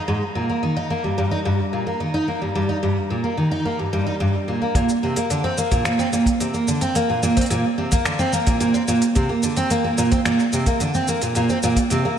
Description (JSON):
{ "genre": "folktronica", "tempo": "109 BPM", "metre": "4/4", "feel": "straight", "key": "Bb major", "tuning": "A4 = 440 Hz", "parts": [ { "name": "flickering grainy texture", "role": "texture", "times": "0.0-3.7 s", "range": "Bb5", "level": "-35 LUFS", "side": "equal", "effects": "built-in reverb" }, { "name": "picked twelve-string acoustic guitar", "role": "arpeggios", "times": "0.1-12.2 s", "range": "G2 to Eb4", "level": "-19 LUFS", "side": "right 1 dB", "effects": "diffuse ambient delay" }, { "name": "kick drum", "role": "drums", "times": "4.8-11.9 s", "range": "none", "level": "-21 LUFS", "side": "equal", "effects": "none" }, { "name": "minimal click drum kit", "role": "drums", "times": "4.8-12.0 s", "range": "finger snaps, hi-hat, shaker", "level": "-28 LUFS", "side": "equal", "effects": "none" } ], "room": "wet lush hall reverb, RT60 2.0 s", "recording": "dreamy mix soaked in reverb, vinyl crackle", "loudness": "-18 LUFS", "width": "side -9 dB against mid", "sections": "0.0-4.8 A section; 4.8-12.2 B section", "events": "none", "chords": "0.3 Eb/G; 4.8 Bbadd9" }